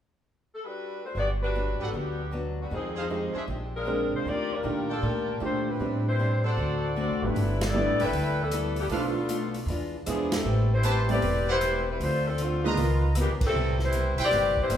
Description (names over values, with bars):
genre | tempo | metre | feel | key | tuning
jazz, big band swing | 155 BPM | 4/4 | swing 66% on 8ths | G major | A4 = 440 Hz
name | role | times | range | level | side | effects
warm saxophone section | melody | 0.6-14.8 s | D3 to D5 | -29 LUFS | left 2 dB | none
upright bass | bass | 1.1-14.8 s | E1 to Bb2 | -29 LUFS | equal | none
picked old ladder-braced acoustic guitar | accompaniment | 1.2-14.8 s | F2 to B4 | -34 LUFS | left 3 dB | none
clear trumpet section | stabs | 1.8-14.3 s | D4 to Bb5 | -34 LUFS | right 1 dB | none
clear baby grand piano | accompaniment | 3.1-12.8 s | G2 to Bb4 | -32 LUFS | right 4 dB | none
swinging big-band drum kit | drums | 7.4-14.8 s | crash cymbal, hi-hat, kick drum, ride cymbal, rim click, snare drum | -35 LUFS | right 1 dB | none
room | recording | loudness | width
wet large studio reverb, RT60 1.3 s | heard from further back in the room | -24 LUFS | side -10 dB against mid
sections
0.0-1.2 A section; 1.2-7.4 B section; 7.4-14.8 C section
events
band accent 7.5, 10.3, 13.4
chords
0.0 Gmaj7; 2.7 Fm7; 3.5 Bb13; 4.3 Ebmaj9#11; 5.8 Am11; 6.6 D7; 7.4 G69; 8.9 Bm7b5; 9.7 E7b9; 10.5 Am9; 12.0 Dm7; 12.8 C#13; 13.5 Cmaj7